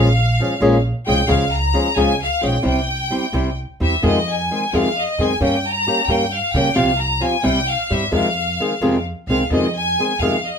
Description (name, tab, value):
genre	mexican folk, mariachi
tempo	88 BPM (dotted quarters)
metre	6/8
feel	straight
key	F minor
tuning	A4 = 439 Hz
part	bright studio violin section	melody	0.0-10.6 s	Eb5 to Bb5	-20 LUFS	left 1 dB	none
part	flamenco guitar	accompaniment	0.0-10.4 s	F2 to Ab4	-18 LUFS	left 1 dB	none
part	upright bass	bass	0.0-10.5 s	Bb1 to Db3	-22 LUFS	right 1 dB	none
room	moderate studio reverb, RT60 0.6 s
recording	minimal, uncompressed stereo recording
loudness	-16 LUFS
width	side -6 dB against mid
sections	0.0-9.5 A section; 9.5-10.6 A section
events	none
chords	0.0 Bbm7; 1.3 Db; 2.6 C; 4.0 Fm7; 5.4 Gdim; 6.8 Csus4; 7.4 C; 8.1 Fm7